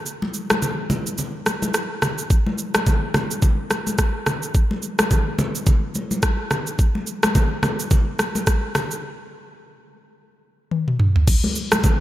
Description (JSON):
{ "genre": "afrobeats", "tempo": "107 BPM", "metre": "4/4", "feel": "swing 58% on 16ths", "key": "none", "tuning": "none", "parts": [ { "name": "afro-pop drum kit", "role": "drums", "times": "0.1-12.0 s", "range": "crash cymbal, kick drum, rim click, shaker, toms", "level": "-19 LUFS", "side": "equal", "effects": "overdrive, gated reverb" }, { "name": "congas", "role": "percussion", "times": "0.2-12.0 s", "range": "none", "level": "-25 LUFS", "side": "left 1 dB", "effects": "none" } ], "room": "light reverb", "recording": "bright 1980s-style digital production", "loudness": "-19 LUFS", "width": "side -14 dB against mid", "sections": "0.0-2.3 A section; 2.3-11.3 B section", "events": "break 0.1-2.3, 9.0-11.3; drum fill 10.7-11.3", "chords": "none" }